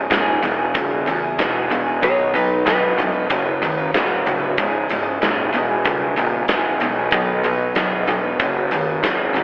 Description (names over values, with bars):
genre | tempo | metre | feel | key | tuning
classic rock | 94 BPM | 4/4 | straight | unclear | A4 = 440 Hz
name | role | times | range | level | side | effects
picked steel-string acoustic guitar | accompaniment | 0.0-9.4 s | B2 to B4 | -24 LUFS | right 1 dB | none
crunchy overdriven guitar | riff | 0.0-9.4 s | C#2 to F#3 | -26 LUFS | equal | none
sludgy distorted guitar | riff | 0.0-9.4 s | C#2 to F#3 | -25 LUFS | equal | overdrive
fuzz fingered electric bass | bass | 0.0-9.4 s | C#1 to E2 | -22 LUFS | equal | overdrive
huge arena drum kit | drums | 0.1-9.4 s | hi-hat, kick drum, snare drum | -22 LUFS | equal | none
clean lap steel guitar | second line | 2.0-3.0 s | D#4 to C#5 | -18 LUFS | equal | none
room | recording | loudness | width
light reverb | telephone sound | -16 LUFS | side -32 dB against mid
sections
0.0-9.4 A section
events
none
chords
0.4 E; 2.0 B; 3.3 F#sus4; 4.6 C#m; 5.5 E; 7.1 B; 8.4 F#sus4